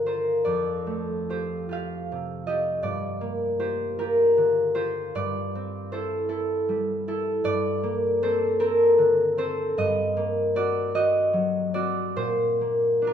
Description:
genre	classical, solo harp piece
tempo	51 BPM (dotted quarters)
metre	6/8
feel	uneven beats, rubato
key	G minor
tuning	A4 = 440 Hz
part	concert harp	solo	0.0-13.1 s	F2 to F5	-22 LUFS	equal	none
room	moderate recital hall reverb, RT60 1.5 s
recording	minimal, uncompressed stereo recording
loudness	-22 LUFS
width	side -8 dB against mid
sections	0.0-13.1 A section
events	none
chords	0.4 Fadd9; 2.8 Gm7; 5.1 Am7/G; 7.4 Gmadd9; 9.8 Cm9b5; 12.2 Bbadd9

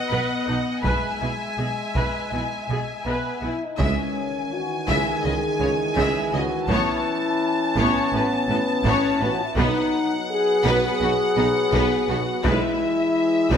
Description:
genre	cinematic, epic orchestral film score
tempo	83 BPM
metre	4/4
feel	straight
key	C# minor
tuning	A4 = 440 Hz
part	rich chamber violin section	melody	0.0-13.6 s	E5 to A5	-28 LUFS	left 3 dB	none
part	clear symphonic violin section	second line	0.0-13.6 s	D#4 to E5	-29 LUFS	left 2 dB	none
part	dark French horn section	sustained chords	0.0-13.6 s	G#3 to G#4	-25 LUFS	left 3 dB	none
part	rich symphonic viola section	accompaniment	0.1-13.6 s	G#3 to B4	-29 LUFS	right 2 dB	none
part	rich studio double bass section	bass	0.1-13.6 s	A1 to C#2	-30 LUFS	right 3 dB	none
part	rich symphonic cello section	bass	0.1-13.6 s	A2 to C#3	-31 LUFS	right 3 dB	none
part	taiko ensemble	drums	0.8-13.6 s	none	-28 LUFS	equal	none
part	warm trombone section	sustained chords	3.8-13.6 s	D#3 to C#4	-29 LUFS	right 2 dB	none
part	warm tuba	bass	3.8-13.6 s	A1 to C#2	-31 LUFS	right 4 dB	none
room	wet scoring stage reverb, RT60 1.6 s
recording	none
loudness	-20 LUFS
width	side -8 dB against mid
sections	0.0-3.8 A section; 3.8-13.6 B section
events	none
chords	0.0 B; 0.8 E/B; 3.8 C#madd9; 6.7 Aadd9; 9.6 B; 12.4 E/B

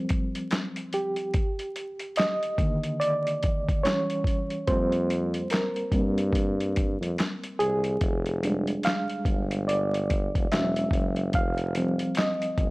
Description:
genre	lo-fi hip hop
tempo	72 BPM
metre	4/4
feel	swing 59% on 16ths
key	F dorian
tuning	A4 = 440 Hz
part	reed electric piano	accompaniment	0.0-12.7 s	D3 to F5	-27 LUFS	right 1 dB	fast tremolo, low-pass filter
part	dusty soul sampler-style drum kit	drums	0.1-12.7 s	handclaps, hi-hat, kick drum, snare drum	-28 LUFS	equal	overdrive, vintage 12-bit sampler grit
part	warm tuba	bass	4.7-12.7 s	E1 to G2	-28 LUFS	equal	transformer saturation
room	little or no reverb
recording	dry, gritty hardware recording, vinyl crackle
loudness	-24 LUFS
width	side -23 dB against mid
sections	0.0-12.7 A section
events	break 0.0-4.7; reed electric piano solo 0.0-12.7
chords	0.0 Fsus24; 1.3 Ebmaj7; 3.8 Em6; 4.7 C7sus4; 8.0 Fm69; 10.5 E6; 11.3 Eb6/F

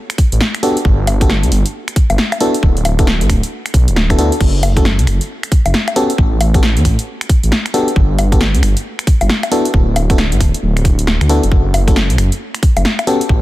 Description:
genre	UK garage, two-step garage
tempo	135 BPM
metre	4/4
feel	swing 62% on 16ths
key	D major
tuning	A4 = 440 Hz
part	punchy analog drum machine	drums	0.1-13.3 s	bongos, crash cymbal, finger snaps, hi-hat, snare drum	-19 LUFS	left 1 dB	overdrive
part	electronic kick drum	drums	0.2-13.4 s	none	-12 LUFS	equal	none
part	dark detuned saw bass	bass	0.3-13.4 s	D1 to E2	-14 LUFS	equal	none
part	FM electric piano	stabs	0.6-13.2 s	A3 to A4	-18 LUFS	left 1 dB	chorus, tape echo
room	digital ambience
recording	dense, heavily limited modern master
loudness	-11 LUFS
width	side -16 dB against mid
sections	0.0-13.4 A section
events	none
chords	0.0 N.C.; 0.6 Gmaj9; 2.4 D69; 4.4 F#5; 6.0 A13; 7.7 Gmaj9; 9.5 D69; 11.5 F#5

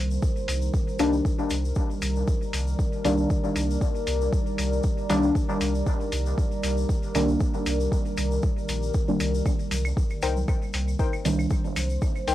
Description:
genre	dub techno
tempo	117 BPM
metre	4/4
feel	swing 54% on 16ths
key	C minor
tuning	A4 = 440 Hz
part	deep dark ambient pad	sustained chords	0.0-12.3 s	Eb3 to D5	-31 LUFS	equal	chorus, built-in reverb, sidechain pumping
part	deep mellow chord stab	stabs	0.0-12.3 s	Eb3 to D4	-27 LUFS	equal	chorus, phaser, sidechain pumping, dub echo
part	pure sine sub bass	bass	0.0-12.3 s	Bb1 to C2	-27 LUFS	equal	sidechain pumping
part	tube shaker	percussion	0.1-12.3 s	none	-42 LUFS	left 8 dB	none
part	electronic kick drum	drums	0.2-12.1 s	none	-26 LUFS	equal	overdrive, cassette tape
part	electronic hi-hat	drums	0.5-12.3 s	none	-32 LUFS	left 1 dB	cassette tape
part	claves and congas	percussion	9.5-12.1 s	none	-37 LUFS	right 1 dB	sidechain pumping on perc, cassette tape, dub echo
part	warbly lo-fi synth keys	riff	10.2-12.3 s	Eb4 to G5	-30 LUFS	left 7 dB	chorus, sidechain pumping, dub echo
room	moderate studio reverb, RT60 0.6 s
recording	home recording on cassette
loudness	-23 LUFS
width	side -14 dB against mid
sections	0.0-12.3 A section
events	none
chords	0.0 Cm7

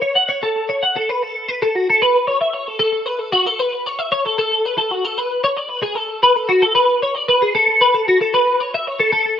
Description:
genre	rock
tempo	76 BPM (dotted quarters)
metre	6/8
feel	straight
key	unclear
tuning	A4 = 440 Hz
part	twelve-string electric guitar	solo	0.0-9.4 s	F#4 to F#5	-15 LUFS	left 1 dB	ensemble chorus, slapback echo
room	little or no reverb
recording	rough home demo mix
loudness	-15 LUFS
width	side -9 dB against mid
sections	0.0-1.2 A section; 1.2-9.4 B section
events	none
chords	none

